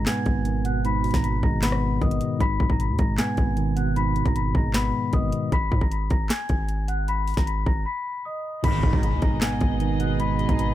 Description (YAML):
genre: hip hop, trap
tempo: 154 BPM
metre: 4/4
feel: half-time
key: G# minor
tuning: A4 = 440 Hz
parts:
  - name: large celesta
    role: melody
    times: 0.0-10.7 s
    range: D#5 to B6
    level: -29 LUFS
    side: left 4 dB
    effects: none
  - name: mellow tine electric piano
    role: accompaniment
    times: 0.0-5.5, 8.6-10.7 s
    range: G#2 to B3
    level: -25 LUFS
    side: moving between left 5 dB and right 7 dB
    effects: auto-pan
  - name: long sustained 808-style bass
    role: bass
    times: 0.0-10.7 s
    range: G#1 to G#2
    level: -26 LUFS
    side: equal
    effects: none
  - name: trap drum kit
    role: drums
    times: 0.1-10.7 s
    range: crash cymbal, handclaps, hi-hat, kick drum, rim click, snare drum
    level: -24 LUFS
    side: equal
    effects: none
  - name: dark chamber string section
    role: sustained chords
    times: 8.6-10.7 s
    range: B3 to D#5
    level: -32 LUFS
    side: right 1 dB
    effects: none
  - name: resonant sweep polysynth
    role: stabs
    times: 8.6-9.0 s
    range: B1 to D#3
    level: -31 LUFS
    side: right 5 dB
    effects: chorus, digital delay
  - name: impact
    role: sound effects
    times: 8.6-10.2 s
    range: none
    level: -34 LUFS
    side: right 1 dB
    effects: none
room: little or no reverb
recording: none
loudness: -21 LUFS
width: side -13 dB against mid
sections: 0.0-8.6 A section; 8.6-10.7 B section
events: break 5.5-8.6; impact 8.6-10.2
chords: 0.0 G#m